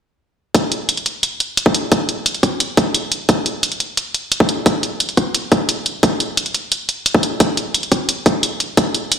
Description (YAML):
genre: drum and bass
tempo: 175 BPM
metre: 4/4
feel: straight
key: none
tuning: none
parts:
  - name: electronic hi-hat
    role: drums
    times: 0.5-9.2 s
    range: none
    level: -18 LUFS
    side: right 1 dB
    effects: none
  - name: electronic kick drum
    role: drums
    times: 0.5-8.8 s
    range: none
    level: -12 LUFS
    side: equal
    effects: high-pass filter on kick
room: digital ambience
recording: played on a big sound system in a bare room, large studio reverb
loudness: -15 LUFS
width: side -8 dB against mid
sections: 0.5-9.2 A section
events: none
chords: none